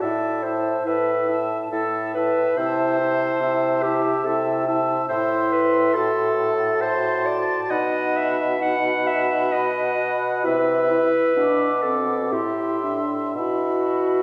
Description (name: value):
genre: classical, slow romantic movement for wind quintet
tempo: 56-73 BPM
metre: 3/4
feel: rubato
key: A minor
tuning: A4 = 439 Hz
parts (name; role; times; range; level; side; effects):
- mellow hollow silver concert flute; melody; 0.0-14.2 s; A5 to D6; -32 LUFS; equal; none
- clear oboe; second line; 0.0-14.2 s; E5 to A5; -32 LUFS; equal; none
- clear clarinet; accompaniment; 0.0-14.2 s; F#4 to F#5; -25 LUFS; equal; none
- warm French horn; accompaniment; 0.0-14.2 s; C4 to F#4; -30 LUFS; equal; none
- warm bassoon; bass; 0.0-14.2 s; A2 to C3; -28 LUFS; equal; none
room: wet recital hall reverb, RT60 1.3 s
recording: heard from further back in the room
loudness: -22 LUFS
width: mono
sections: 0.0-14.2 A section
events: none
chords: 0.0 A5; 2.6 Am/C; 5.1 F#m7b5/A; 7.7 B; 10.4 Cmaj7; 12.3 Am; 13.4 Bsus4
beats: | 0.03 0.87 1.73 | 2.58 3.41 4.25 | 5.10 5.95 6.82 | 7.70 8.60 9.53 | 10.44 11.37 12.32 | 13.36